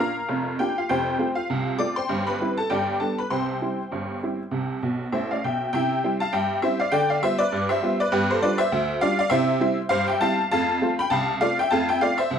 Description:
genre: ragtime piano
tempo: 100 BPM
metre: 2/4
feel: swing 57% on 16ths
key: C major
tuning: A4 = 441 Hz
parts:
  - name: honky-tonk upright piano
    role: solo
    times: 0.0-12.4 s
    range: F1 to D6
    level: -21 LUFS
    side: equal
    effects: none
room: moderate studio reverb, RT60 0.5 s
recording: none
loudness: -21 LUFS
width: side -7 dB against mid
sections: 0.0-5.7 A section; 5.7-12.4 B section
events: honky-tonk piano fill 4.8-5.7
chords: 0.0 Bb; 0.9 F; 2.1 C/G; 2.7 G; 3.3 C; 6.9 G7/D; 8.1 G7; 9.3 C; 10.5 F

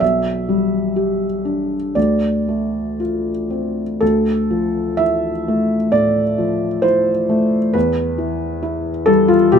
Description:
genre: neoclassical minimalist piano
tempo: 58-68 BPM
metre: 4/4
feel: rubato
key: D dorian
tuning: A4 = 438 Hz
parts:
  - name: felt-muted upright piano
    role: solo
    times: 0.0-9.6 s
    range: B1 to E5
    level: -15 LUFS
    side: equal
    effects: none
room: light reverb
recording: minimal, uncompressed stereo recording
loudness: -16 LUFS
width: side -7 dB against mid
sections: 0.0-4.0 A section; 4.0-9.6 A section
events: none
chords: 0.0 G/B; 2.0 Dm7; 4.0 Dmadd9; 7.8 Em

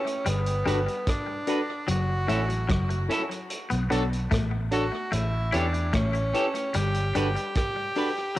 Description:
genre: lovers rock reggae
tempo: 74 BPM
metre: 4/4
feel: straight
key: unclear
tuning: A4 = 442 Hz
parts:
  - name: edgy tenor saxophone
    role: melody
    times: 0.0-8.4 s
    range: B3 to G4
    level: -30 LUFS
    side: equal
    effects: cassette tape, tape echo
  - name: mellow tine electric piano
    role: accompaniment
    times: 0.1-8.1 s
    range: D4 to C#5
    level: -32 LUFS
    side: left 2 dB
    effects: medium stereo tremolo, cassette tape
  - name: vintage drum kit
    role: drums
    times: 0.1-8.4 s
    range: hi-hat, kick drum, rim click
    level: -32 LUFS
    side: equal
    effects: cassette tape, tape echo
  - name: twangy electric guitar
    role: riff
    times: 0.3-8.4 s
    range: F#3 to E4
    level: -33 LUFS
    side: left 4 dB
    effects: cassette tape, tape echo
  - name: vintage muted fingered electric bass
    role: bass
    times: 0.3-7.3 s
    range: F#1 to E2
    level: -27 LUFS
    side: equal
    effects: none
  - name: clean electric guitar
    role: stabs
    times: 0.7-8.1 s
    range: C#4 to B4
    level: -32 LUFS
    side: right 2 dB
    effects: cassette tape
room: moderate spring reverb, RT60 2.2 s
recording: home recording on cassette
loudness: -24 LUFS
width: side -15 dB against mid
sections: 0.0-8.4 A section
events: none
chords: 0.3 Gmaj7; 1.9 F#m7; 3.5 Bm7; 5.1 A7; 6.7 Gmaj7

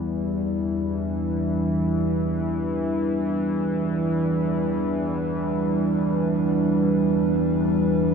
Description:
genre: dark ambient drone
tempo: free time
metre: none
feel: none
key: E minor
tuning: A4 = 438 Hz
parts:
  - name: dark analog pad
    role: sustained chords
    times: 0.0-8.1 s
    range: G3 to B4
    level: -23 LUFS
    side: equal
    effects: chorus
  - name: analog drone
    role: drone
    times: 0.0-8.1 s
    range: E2 to E3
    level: -25 LUFS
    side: right 1 dB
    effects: chorus
room: wet huge ambient reverb, RT60 7.8 s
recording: dreamy mix soaked in reverb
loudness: -21 LUFS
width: side -6 dB against mid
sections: 0.0-8.1 A section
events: none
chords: 0.0 Em

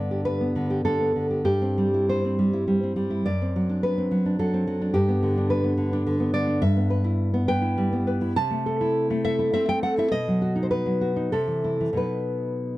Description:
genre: romantic piece for solo classical guitar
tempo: 88-108 BPM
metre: 3/4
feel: rubato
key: G major, E minor from 6.6 s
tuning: A4 = 440 Hz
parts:
  - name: nylon-string guitar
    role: solo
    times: 0.0-12.8 s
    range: F#2 to A5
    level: -22 LUFS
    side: equal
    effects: none
room: little or no reverb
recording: dry, close 1970s-style studio recording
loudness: -22 LUFS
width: side -17 dB against mid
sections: 0.0-12.8 A section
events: none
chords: 0.0 G; 1.5 C/G; 3.2 D7/F#; 4.9 G; 6.6 Em/G; 8.4 Am/C; 10.1 B; 11.3 C; 12.0 B

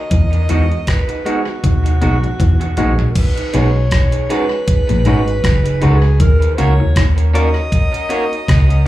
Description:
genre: lovers rock reggae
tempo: 79 BPM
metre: 4/4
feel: swing 57% on 16ths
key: B major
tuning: A4 = 440 Hz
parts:
  - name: warm alto saxophone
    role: melody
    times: 0.0-8.9 s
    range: F#4 to D#5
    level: -23 LUFS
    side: equal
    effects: tape echo, slapback echo
  - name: electric guitar through a small old amp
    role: riff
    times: 0.1-8.7 s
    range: F#2 to E3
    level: -24 LUFS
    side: left 4 dB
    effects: wide subtle chorus, slapback echo
  - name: vintage muted fingered electric bass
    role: bass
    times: 0.1-8.9 s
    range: F#1 to E2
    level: -13 LUFS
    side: equal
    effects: none
  - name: detuned 8-bit digital drum machine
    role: drums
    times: 0.1-8.9 s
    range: crash cymbal, hi-hat, kick drum, rim click, toms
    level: -17 LUFS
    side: equal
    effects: none
  - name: barky tine electric piano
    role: accompaniment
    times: 0.5-8.4 s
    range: G#3 to F#4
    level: -24 LUFS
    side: left 3 dB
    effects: slapback echo
  - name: electric guitar through a small old amp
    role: stabs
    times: 0.5-8.2 s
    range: G#3 to B4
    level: -22 LUFS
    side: right 4 dB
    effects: tape echo, slapback echo
room: light reverb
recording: live gig heard through the venue's PA, club reverb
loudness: -12 LUFS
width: side -15 dB against mid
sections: 0.0-3.2 A section; 3.2-8.9 B section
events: drum fill 1.6-3.2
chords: 0.1 Emaj9; 3.2 B6; 6.2 D#m7

